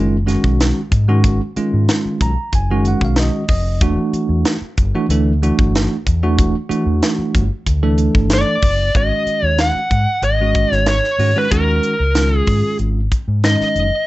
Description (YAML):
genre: electric jazz fusion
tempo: 94 BPM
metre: 4/4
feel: straight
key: unclear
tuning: A4 = 440 Hz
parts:
  - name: bell-like tine electric piano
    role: accompaniment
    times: 0.0-13.9 s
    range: D#3 to A#5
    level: -19 LUFS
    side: right 2 dB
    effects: fast stereo tremolo
  - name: fingered electric bass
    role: bass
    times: 0.0-13.9 s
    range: E1 to G#2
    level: -17 LUFS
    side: equal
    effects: none
  - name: crisp fusion drum kit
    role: drums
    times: 0.3-13.9 s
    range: hi-hat, kick drum, snare drum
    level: -18 LUFS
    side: equal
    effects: none
  - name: biting lead guitar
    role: melody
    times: 8.3-14.1 s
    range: A#4 to F#5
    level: -17 LUFS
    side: equal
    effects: overdrive
room: light reverb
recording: nothing above 8.0 kHz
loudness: -14 LUFS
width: side -17 dB against mid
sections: 0.0-9.0 A section; 9.0-14.1 B section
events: tine electric piano fill 1.9-3.8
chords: 0.0 G#m7; 3.8 Em11; 9.0 G#sus2